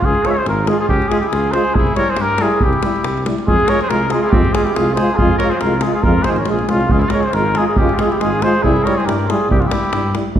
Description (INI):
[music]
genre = balkan folk, Balkan brass band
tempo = 139 BPM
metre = 2/4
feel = swing 56% on 16ths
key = unclear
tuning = A4 = 440 Hz
[part]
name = mellow trumpet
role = melody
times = 0.0-10.2 s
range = F4 to E5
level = -18 LUFS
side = left 1 dB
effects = none
[part]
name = clear trumpet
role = second line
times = 0.0-10.1 s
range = C4 to C5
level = -25 LUFS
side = right 1 dB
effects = none
[part]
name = dark tuba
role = bass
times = 0.0-10.4 s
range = Ab1 to G2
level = -21 LUFS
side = equal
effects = none
[part]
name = davul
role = percussion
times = 0.0-10.4 s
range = none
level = -19 LUFS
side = equal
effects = none
[part]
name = warm trombone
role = accompaniment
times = 0.2-10.4 s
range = G3 to Ab3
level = -22 LUFS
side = right 4 dB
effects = none
[part]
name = warm euphonium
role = accompaniment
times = 0.3-10.4 s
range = E4 to F4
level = -24 LUFS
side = left 3 dB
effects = none
[sound]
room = wet recital hall reverb, RT60 1.6 s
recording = recorded in a church or concert hall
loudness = -13 LUFS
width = side -10 dB against mid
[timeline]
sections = 0.0-3.5 A section; 3.5-10.4 A section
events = none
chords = 0.0 Db; 1.8 C; 3.5 Fm; 6.9 Db; 8.6 C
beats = | 0.03 0.46 | 0.89 1.32 | 1.75 2.18 | 2.61 3.04 | 3.48 3.91 | 4.34 4.77 | 5.20 5.63 | 6.06 6.49 | 6.92 7.35 | 7.78 8.21 | 8.64 9.07 | 9.50 9.93 | 10.37